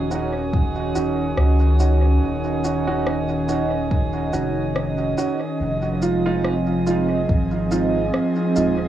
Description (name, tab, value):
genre	ambient dub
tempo	71 BPM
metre	4/4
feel	swing 56% on 16ths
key	Eb dorian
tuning	A4 = 443 Hz
part	airy breathy pad	sustained chords	0.0-8.9 s	Eb3 to Eb5	-22 LUFS	equal	chorus, cassette tape
part	soft dub sub bass	bass	0.0-8.9 s	Eb1 to Db2	-23 LUFS	equal	none
part	drifting glass-harmonics texture	texture	0.0-8.9 s	Ab4	-34 LUFS	right 6 dB	chorus, built-in reverb, cassette tape
part	dark upright piano	stabs	0.1-8.7 s	Ab3 to Gb4	-25 LUFS	right 4 dB	cassette tape, dub echo
part	electronic shaker and rim click	drums	0.1-8.8 s	none	-32 LUFS	left 2 dB	overdrive, cassette tape, dub echo
part	electronic kick drum	drums	0.5-7.5 s	none	-20 LUFS	equal	overdrive, cassette tape
room	light reverb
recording	home recording on cassette, small room ambience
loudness	-18 LUFS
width	side -12 dB against mid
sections	0.0-8.9 A section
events	none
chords	0.0 Ebm7; 5.6 Fm7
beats	0.53 1.38 | 2.22 3.07 3.91 4.76 | 5.60 6.45 7.29 8.14